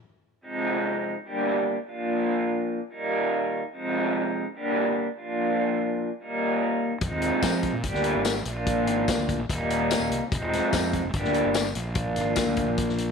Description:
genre	indie rock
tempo	146 BPM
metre	4/4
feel	straight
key	unclear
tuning	A4 = 440 Hz
part	electric guitar through a small old amp	riff	0.4-13.1 s	Eb2 to G4	-25 LUFS	equal	none
part	fuzz fingered electric bass	bass	7.0-13.1 s	Eb1 to F3	-31 LUFS	right 1 dB	overdrive
part	vintage drum kit	drums	7.0-13.1 s	hi-hat, kick drum, snare drum, tambourine	-29 LUFS	left 3 dB	none
room	light reverb, small room ambience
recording	1960s-style stereo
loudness	-24 LUFS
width	side -5 dB against mid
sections	0.4-13.1 A section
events	stop 0.0-0.4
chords	0.4 Fm7; 1.2 Gm; 1.9 Bb; 2.9 Eb; 3.7 Fm7; 4.5 Gm; 5.2 Bb; 6.2 Eb; 7.0 Fm7; 7.8 Gm; 8.5 Bb7; 9.5 Eb; 10.3 Fm7; 11.1 Gm; 11.8 Bb7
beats	0.01 | 0.42 0.83 1.25 1.66 | 2.07 2.49 2.90 3.31 | 3.72 4.14 4.55 4.96 | 5.38 5.79 6.20 6.61 | 7.02 7.44 7.85 8.26 | 8.67 9.08 9.49 9.91 | 10.32 10.73 11.14 11.55 | 11.96 12.38 12.79

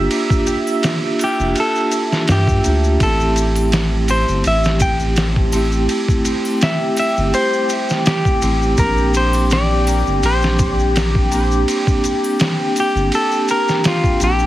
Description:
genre	trip hop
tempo	83 BPM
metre	4/4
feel	swing 54% on 16ths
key	unclear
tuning	A4 = 440 Hz
part	vibraphone with soft mallets	accompaniment	0.0-14.5 s	A3 to G4	-20 LUFS	right 1 dB	tremolo
part	deep dark ambient pad	sustained chords	0.0-14.5 s	G4 to E5	-24 LUFS	left 2 dB	chorus, built-in reverb
part	round analog bass	bass	0.0-14.5 s	F1 to G2	-18 LUFS	equal	tube saturation
part	trip hop sampler-style drum kit	drums	0.1-14.4 s	kick drum, ride cymbal, snare drum	-20 LUFS	equal	small room ambience
part	maracas and triangle	percussion	0.1-14.5 s	none	-30 LUFS	left 3 dB	none
part	semi-hollow electric guitar	melody	1.2-14.5 s	F4 to G5	-21 LUFS	left 1 dB	dub echo
room	little or no reverb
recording	heavily compressed radio sound, vinyl crackle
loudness	-14 LUFS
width	side -14 dB against mid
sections	0.0-14.5 A section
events	none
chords	0.0 Gm7; 3.0 Am7; 8.8 Bb69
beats	| 0.11 0.83 1.56 2.28 | 3.00 3.73 4.45 5.17 | 5.89 6.62 7.34 8.06 | 8.79 9.51 10.23 10.96 | 11.68 12.40 13.12 13.85

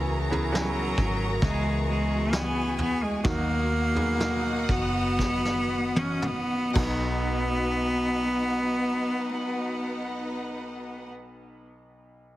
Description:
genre	pop ballad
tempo	54-69 BPM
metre	4/4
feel	straight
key	B major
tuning	A4 = 440 Hz
part	warm studio violin section	second line	0.0-11.1 s	D#4 to A#5	-36 LUFS	equal	none
part	bright concert grand piano	accompaniment	0.0-12.4 s	B1 to G#4	-36 LUFS	right 2 dB	none
part	warm studio string section	sustained chords	0.0-11.1 s	B3 to D#6	-38 LUFS	equal	none
part	picked steel-string acoustic guitar	arpeggios	0.0-11.2 s	B2 to G#4	-36 LUFS	left 6 dB	none
part	vintage muted fingered electric bass	bass	0.0-11.1 s	F#1 to D#2	-31 LUFS	equal	none
part	vintage brush drum kit	drums	0.3-7.0 s	crash cymbal, kick drum, snare drum, toms	-30 LUFS	equal	none
part	bright cello	melody	0.5-11.1 s	F#3 to C#4	-28 LUFS	equal	none
room	studio reverb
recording	heavily compressed radio sound, multiband compression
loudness	-24 LUFS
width	side -15 dB against mid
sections	0.0-7.3 A section; 7.3-11.8 B section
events	slowing down 0.0-7.3; drum fill 5.2-7.3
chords	0.0 C#m7; 3.2 B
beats	0.53 1.42 2.32 | 3.24 4.20 5.18 6.22 | 7.30 8.42 9.54 10.65

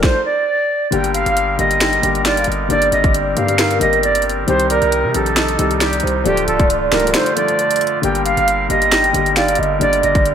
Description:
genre	hip hop, trap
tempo	135 BPM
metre	4/4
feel	half-time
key	G minor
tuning	A4 = 440 Hz
part	reedy silver concert flute	melody	0.0-10.2 s	G4 to G5	-17 LUFS	right 2 dB	low-pass filter, analog delay
part	dark baby grand piano	accompaniment	0.0-10.3 s	D3 to A4	-22 LUFS	left 6 dB	low-pass filter
part	distorted 808-style bass	bass	0.0-10.3 s	C1 to C3	-23 LUFS	equal	distortion
part	trap drum kit	drums	0.0-10.3 s	finger snaps, hi-hat, kick drum, snare drum	-19 LUFS	equal	overdrive
part	pipe organ, soft reed	sustained chords	0.9-10.3 s	C3 to Bb4	-24 LUFS	right 1 dB	none
part	warm velvety synth lead	second line	1.1-10.3 s	A4 to G5	-22 LUFS	right 2 dB	chorus, analog delay
room	wet plate reverb, RT60 1.4 s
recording	dreamy mix soaked in reverb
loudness	-13 LUFS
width	side -8 dB against mid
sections	0.9-10.3 A section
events	stop 0.0-0.9; kick muted 7.1-8.0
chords	0.0 Dm; 0.9 Gm; 4.5 Cm; 6.3 Dm; 8.0 Gm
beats	0.03 0.48 | 0.92 1.37 1.81 2.25 | 2.70 3.14 3.59 4.03 | 4.48 4.92 5.37 5.81 | 6.25 6.70 7.14 7.59 | 8.03 8.48 8.92 9.37 | 9.81 10.26

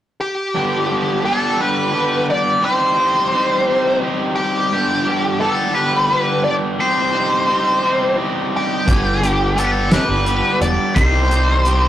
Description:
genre	psychedelic rock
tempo	58 BPM (dotted quarters)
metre	6/8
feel	straight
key	G major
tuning	A4 = 435 Hz
part	biting lead guitar	melody	0.2-11.9 s	G4 to D5	-17 LUFS	equal	wah, overdrive
part	overdriven semi-hollow guitar	riff	0.6-11.9 s	G2 to G4	-19 LUFS	equal	none
part	deep dub picked electric bass	bass	8.9-11.9 s	E1 to C2	-19 LUFS	equal	none
part	cloth-damped thuddy drum kit	drums	8.9-11.8 s	hi-hat, kick drum, snare drum	-18 LUFS	equal	none
room	wet studio reverb, RT60 0.6 s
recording	rough rehearsal-room recording, tube saturation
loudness	-15 LUFS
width	side -12 dB against mid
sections	0.6-11.9 A section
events	none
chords	0.0 N.C.; 0.6 G; 2.6 Cm; 4.7 G; 6.8 Cm; 8.9 G; 11.0 Cm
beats	| 0.55 1.60 | 2.64 3.68 | 4.72 5.76 | 6.80 7.84 | 8.89 9.93 | 10.97

